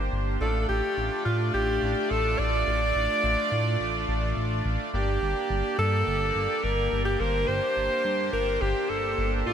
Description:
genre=synthwave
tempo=106 BPM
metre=4/4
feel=straight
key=unclear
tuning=A4 = 441 Hz
part: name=clear alto saxophone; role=melody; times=0.0-9.5 s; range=F4 to D5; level=-27 LUFS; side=equal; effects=digital delay
part: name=soft supersaw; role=sustained chords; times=0.0-9.5 s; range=A3 to D5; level=-30 LUFS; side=right 2 dB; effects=none
part: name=chorused synth bass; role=bass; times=0.0-9.5 s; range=G1 to A2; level=-28 LUFS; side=equal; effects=tube saturation
room=moderate lush hall reverb, RT60 2.4 s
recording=bright 1980s-style digital production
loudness=-24 LUFS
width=side -8 dB against mid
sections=0.0-4.9 A section; 4.9-9.5 B section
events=none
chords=0.4 Dm/A; 4.9 Gm

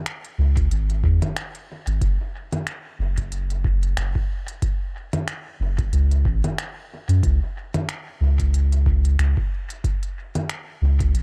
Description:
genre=ambient dub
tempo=92 BPM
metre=4/4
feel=swing 56% on 16ths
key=unclear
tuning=A4 = 440 Hz
part: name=organic electronic drum kit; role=drums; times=0.1-11.2 s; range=congas, finger snaps, hi-hat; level=-32 LUFS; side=equal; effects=dub echo
part: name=soft dub sub bass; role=bass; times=0.4-11.2 s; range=F#1 to F#2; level=-21 LUFS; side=equal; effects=none
part: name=electronic kick drum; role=drums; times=0.6-11.1 s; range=none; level=-27 LUFS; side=equal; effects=overdrive
room=little or no reverb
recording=none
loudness=-23 LUFS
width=mono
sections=0.0-11.2 A section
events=none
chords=none

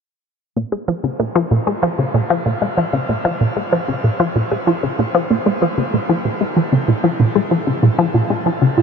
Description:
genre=ambient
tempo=95 BPM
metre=4/4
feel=straight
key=Bb minor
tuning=A4 = 439 Hz
part: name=resonant blip pluck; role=riff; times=0.6-8.8 s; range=Bb2 to Ab3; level=-15 LUFS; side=equal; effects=phaser, cassette tape, ping-pong delay
room=wet shimmer reverb, RT60 7.6 s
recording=none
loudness=-15 LUFS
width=side -6 dB against mid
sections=0.6-8.8 A section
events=none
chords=none

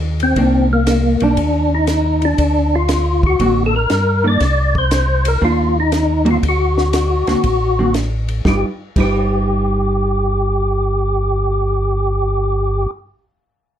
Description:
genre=soul jazz organ trio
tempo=119 BPM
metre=4/4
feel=swing 68% on 8ths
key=unclear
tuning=A4 = 440 Hz
part: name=mellow tonewheel organ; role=bass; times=0.0-12.9 s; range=G1 to G2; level=-18 LUFS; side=equal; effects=slow rotary speaker
part: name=percussive tonewheel organ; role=melody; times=0.2-12.9 s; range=Bb3 to D5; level=-17 LUFS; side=left 1 dB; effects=chorus vibrato, fast rotary speaker
part: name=compact cocktail drum kit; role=drums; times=0.2-9.2 s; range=crash cymbal, hi-hat, kick drum, ride cymbal, snare drum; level=-23 LUFS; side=equal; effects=none
part: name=vintage hollow-body jazz guitar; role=accompaniment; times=0.4-12.9 s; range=D3 to B4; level=-19 LUFS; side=right 2 dB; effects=none
room=moderate club reverb, RT60 0.6 s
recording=dark, warm production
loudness=-14 LUFS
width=side -10 dB against mid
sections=0.4-8.5 A section; 8.5-12.5 B section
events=none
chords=0.4 Cm9; 2.4 D7b13; 4.4 Cm9; 6.4 D7b13; 8.5 G7b13

